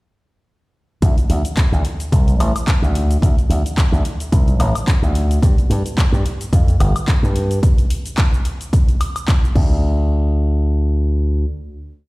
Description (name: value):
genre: nu-disco, nu disco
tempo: 109 BPM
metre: 4/4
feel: swing 55% on 16ths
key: D minor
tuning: A4 = 440 Hz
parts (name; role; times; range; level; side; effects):
- slap bass with an envelope filter; bass; 1.0-11.4 s; G1 to G2; -16 LUFS; equal; none
- electronic kick drum; drums; 1.0-9.7 s; none; -14 LUFS; equal; overdrive
- house drum kit; drums; 1.0-9.7 s; crash cymbal, handclaps, hi-hat, shaker, woodblock; -27 LUFS; left 1 dB; overdrive
room: little or no reverb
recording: played on a big sound system in a bare room, large studio reverb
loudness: -14 LUFS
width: side -22 dB against mid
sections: 1.0-9.8 drop; 9.8-12.0 final hit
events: drop 1.0-9.8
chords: none